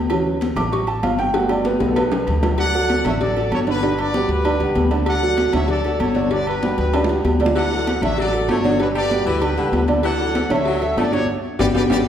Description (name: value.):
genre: latin, salsa.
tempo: 193 BPM.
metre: 4/4.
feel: straight.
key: D major.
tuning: A4 = 439 Hz.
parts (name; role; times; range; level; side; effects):
clear baby grand piano; accompaniment; 0.0-12.0 s; D3 to D6; -22 LUFS; right 3 dB; none.
upright bass; bass; 0.0-12.0 s; G1 to D2; -24 LUFS; equal; none.
agogo bells and timbales; percussion; 0.1-12.0 s; none; -27 LUFS; right 2 dB; none.
congas; percussion; 0.1-12.0 s; none; -24 LUFS; left 3 dB; none.
cowbell and bongos; percussion; 0.1-12.0 s; none; -27 LUFS; left 2 dB; none.
bright trumpet section; melody; 2.6-12.0 s; G4 to F#5; -24 LUFS; left 2 dB; none.
edgy baritone saxophone; second line; 7.6-12.0 s; D3 to A3; -28 LUFS; left 3 dB; none.
room: wet recital hall reverb, RT60 1.8 s.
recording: recorded in a church or concert hall.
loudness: -17 LUFS.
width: side -9 dB against mid.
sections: 0.0-2.6 A section; 2.6-12.1 B section.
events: grand piano solo 0.0-2.6; drum fill 1.3-2.6, 6.9-7.6, 11.7-12.1; band accent 11.3-12.1.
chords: 0.1 Dmaj7; 1.3 Gmaj7; 2.6 D; 3.8 Gmaj7; 5.1 Dmaj7; 6.3 Gmaj7; 7.6 Dmaj7; 8.8 Gmaj7; 10.0 Dmaj7; 11.3 Gmaj7.